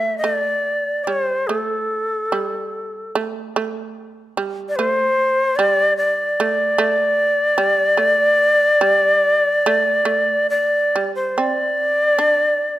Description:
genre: japanese traditional, Japanese chamber music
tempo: 73 BPM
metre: 4/4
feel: rubato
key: unclear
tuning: A4 = 441 Hz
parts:
  - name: bright shakuhachi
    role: melody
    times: 0.0-12.8 s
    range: A4 to E5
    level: -16 LUFS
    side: equal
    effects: none
  - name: shamisen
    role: second line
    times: 0.0-12.8 s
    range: G3 to D4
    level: -24 LUFS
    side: right 5 dB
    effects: none
room: light reverb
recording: close, detailed microphones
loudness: -16 LUFS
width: side -14 dB against mid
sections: 0.0-11.4 A section; 11.4-12.8 B section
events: none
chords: none

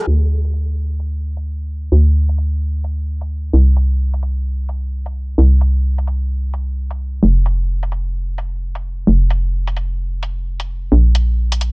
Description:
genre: UK garage, two-step garage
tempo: 130 BPM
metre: 4/4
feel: swing 61% on 16ths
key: D minor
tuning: A4 = 442 Hz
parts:
  - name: hollow knocking FM bass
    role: bass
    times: 0.1-11.7 s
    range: F1 to D2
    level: -15 LUFS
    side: equal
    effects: none
  - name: electronic hi-hat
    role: drums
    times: 0.1-11.7 s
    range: none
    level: -21 LUFS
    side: equal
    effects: none
room: little or no reverb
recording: dry, gritty hardware recording, low-pass filter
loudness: -15 LUFS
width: side -34 dB against mid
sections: 0.1-11.7 A section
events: band accent 0.0; filter sweep 0.1-11.7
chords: none

